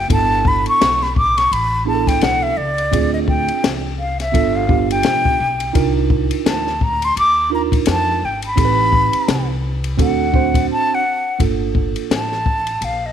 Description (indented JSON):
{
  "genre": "hip hop, jazz-hop",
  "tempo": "85 BPM",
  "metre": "4/4",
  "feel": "swing 59% on 16ths",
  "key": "unclear",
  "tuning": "A4 = 443 Hz",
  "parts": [
    { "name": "breathy silver concert flute", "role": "melody", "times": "0.0-13.1 s", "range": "D5 to D6", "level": "-18 LUFS", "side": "left 1 dB", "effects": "none" },
    { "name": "upright bass", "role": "bass", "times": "0.0-13.1 s", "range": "G1 to F2", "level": "-23 LUFS", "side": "left 1 dB", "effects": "none" },
    { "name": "mellow tine electric piano", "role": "accompaniment", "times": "0.1-12.3 s", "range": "Bb3 to C5", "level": "-21 LUFS", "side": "right 13 dB", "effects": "medium stereo tremolo" },
    { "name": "open jazz drum kit", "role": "drums", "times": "0.1-13.0 s", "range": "hi-hat, kick drum, ride cymbal, snare drum", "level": "-20 LUFS", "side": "left 3 dB", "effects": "none" }
  ],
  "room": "light reverb, small room ambience",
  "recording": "1960s-style stereo",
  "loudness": "-14 LUFS",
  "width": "side -9 dB against mid",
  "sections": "0.0-11.4 A section; 11.4-13.1 B section",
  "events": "flute solo 0.0-11.4; break 10.7-11.4",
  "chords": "0.1 G69; 2.9 Dm7b5; 4.3 G7; 5.8 Cm11; 8.6 Am7b5; 10.0 D7; 11.4 Gm9"
}